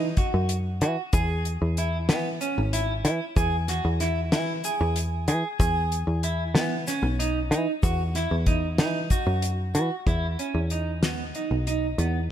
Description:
progressive instrumental, band music in an uneven meter; 188 BPM (eighths); 7/8; straight; E major; A4 = 440 Hz
clean electric guitar; arpeggios; 0.0-12.2 s; B3 to G#4; -29 LUFS; right 2 dB; wide subtle chorus, ping-pong delay, slapback echo
picked electric bass; bass; 0.0-12.3 s; G#1 to E3; -25 LUFS; equal
damped 70s drum kit; drums; 0.2-12.1 s; hi-hat, kick drum, snare drum; -27 LUFS; left 1 dB
tube shaker; percussion; 1.1-9.9 s; -41 LUFS; left 8 dB
light reverb, studio ambience; -23 LUFS; side -10 dB against mid
0.0-10.1 A section; 10.1-12.3 B section
0.0 Esus2; 1.1 C#m/E (rootless); 3.4 E; 5.6 Emaj7; 7.8 Esus2; 10.1 Emaj7(no3)

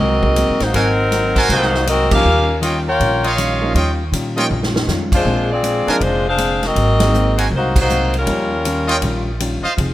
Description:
jazz, big band swing; 160 BPM; 4/4; swing 64% on 8ths; A4 = 440 Hz
bright saxophone section; melody; 0.0-9.3 s; Gb3 to G5; -17 LUFS; left 1 dB
hollow-body jazz guitar; accompaniment; 0.0-9.9 s; Ab2 to Ab4; -25 LUFS; left 3 dB
upright bass; bass; 0.0-9.9 s; F1 to Bb2; -20 LUFS; equal
warm baby grand piano; accompaniment; 0.2-8.5 s; F3 to Eb4; -24 LUFS; right 1 dB
swinging big-band drum kit; drums; 0.2-9.9 s; crash cymbal, hi-hat, kick drum, ride cymbal, snare drum, toms; -23 LUFS; equal
brilliant trumpet section; stabs; 0.7-9.7 s; D4 to Ab5; -21 LUFS; right 2 dB
light reverb, small room ambience; rough home demo mix; -14 LUFS; side -14 dB against mid
0.0-9.9 A section
band accent 2.1, 5.1, 7.7; drum fill 4.5-4.9
0.0 Ab9; 2.2 Eb9; 5.3 Bb9; 6.8 Ab9; 8.3 Eb9

